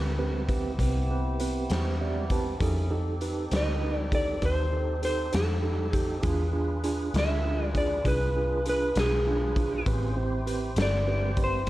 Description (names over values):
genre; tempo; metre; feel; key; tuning
slow blues; 66 BPM (dotted quarters); 12/8; straight; A minor; A4 = 436 Hz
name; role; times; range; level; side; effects
electric slide guitar; melody; 0.0-11.7 s; G#4 to E5; -30 LUFS; equal; plate reverb
tine electric piano; accompaniment; 0.0-11.6 s; C4 to A5; -32 LUFS; right 4 dB; medium tremolo
tonewheel organ; sustained chords; 0.0-11.7 s; B3 to C5; -37 LUFS; equal; slow rotary speaker, plate reverb
vintage muted fingered electric bass; bass; 0.0-11.7 s; G1 to F2; -29 LUFS; equal; none
raw garage drum kit; drums; 0.5-11.7 s; hi-hat, kick drum, snare drum; -31 LUFS; equal; none
room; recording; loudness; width
light reverb; dark, warm production; -25 LUFS; side -16 dB against mid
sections
0.0-11.7 A section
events
tine electric piano fill 1.7-2.6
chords
0.0 Am7; 2.6 F7; 6.2 E7b9; 9.9 Am7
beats
0.79 1.70 | 2.61 3.52 4.43 5.33 | 6.24 7.15 8.06 8.96 | 9.87 10.78 11.68